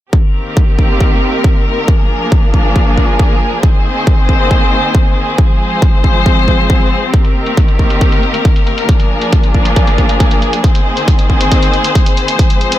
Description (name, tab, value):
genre	uplifting trance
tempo	137 BPM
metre	4/4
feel	straight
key	C minor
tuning	A4 = 440 Hz
part	muted chamber string section	sustained chords	0.1-12.8 s	Eb3 to C5	-14 LUFS	left 1 dB	sidechain pumping
part	electronic kick drum	drums	0.1-12.5 s	none	-10 LUFS	equal	none
part	electronic hi-hat	drums	7.1-12.8 s	none	-23 LUFS	right 1 dB	overdrive, sidechain pumping on hats, low-pass filter on hats, low-pass filter on room
room	little or no reverb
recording	none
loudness	-9 LUFS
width	side -13 dB against mid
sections	0.1-12.8 A section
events	none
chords	0.1 Cm7; 1.9 Bb7; 3.6 Abadd9; 5.4 Fm; 7.1 Cm7; 8.9 Bb7; 10.6 Abadd9